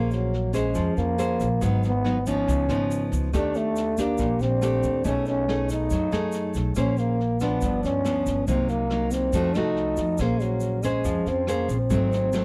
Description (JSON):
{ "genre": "bossa nova", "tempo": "140 BPM", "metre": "4/4", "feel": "straight", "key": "Bb minor", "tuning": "A4 = 440 Hz", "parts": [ { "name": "growling trombone", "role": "melody", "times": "0.0-12.4 s", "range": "Gb3 to D#4", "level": "-28 LUFS", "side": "equal", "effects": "none" }, { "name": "nylon-string guitar", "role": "accompaniment", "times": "0.0-12.4 s", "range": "G2 to C5", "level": "-29 LUFS", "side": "equal", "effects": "none" }, { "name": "upright bass", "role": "bass", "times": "0.0-12.4 s", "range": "G1 to F#2", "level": "-30 LUFS", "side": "equal", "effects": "none" }, { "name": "jazz brush drum kit", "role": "drums", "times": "0.1-12.4 s", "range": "kick drum, rim click, snare drum", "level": "-37 LUFS", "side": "equal", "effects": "none" }, { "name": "tube shaker", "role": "percussion", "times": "0.1-12.4 s", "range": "none", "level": "-48 LUFS", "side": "equal", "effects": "none" } ], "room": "little or no reverb", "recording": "dry, close 1970s-style studio recording, tape saturation", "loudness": "-24 LUFS", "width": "mono", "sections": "0.0-12.4 A section", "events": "none", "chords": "0.0 Bbm9; 1.6 Abm7; 2.5 Db9; 3.3 Ebmaj7#11; 5.0 B13; 6.8 Bbm9; 7.6 G7; 8.5 Cm7b5; 9.3 F7b9; 10.2 Bbm9; 11.9 Ab7b9" }